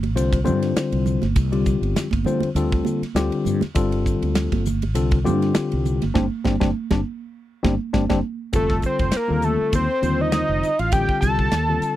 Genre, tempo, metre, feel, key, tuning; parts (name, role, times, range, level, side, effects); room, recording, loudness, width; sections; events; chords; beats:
electric jazz fusion; 100 BPM; 4/4; swing 54% on 16ths; A4 = 440 Hz
mellow fretless electric bass; bass; 0.0-11.8 s; F1 to G2; -23 LUFS; equal; lush chorus
modern studio drum kit; drums; 0.0-12.0 s; hi-hat, kick drum, ride cymbal, snare drum; -24 LUFS; equal
congas; percussion; 0.0-8.2 s; -27 LUFS; right 8 dB
tine electric piano; accompaniment; 0.2-12.0 s; D3 to C5; -24 LUFS; left 4 dB
fat analog lead; melody; 8.6-12.0 s; A4 to A5; -22 LUFS; equal; chorus
light reverb; dry, close 1970s-style studio recording; -19 LUFS; side -13 dB against mid
0.0-8.5 A section; 8.5-12.0 B section
band accent 6.2-8.5; drum fill 7.3-8.5; tine electric piano fill 7.3-8.5
0.0 G9sus4; 8.5 F7
0.16 0.76 | 1.36 1.96 2.56 3.16 | 3.76 4.36 4.96 5.55 | 6.15 6.75 7.34 7.94 | 8.54 9.13 9.73 10.33 | 10.93 11.52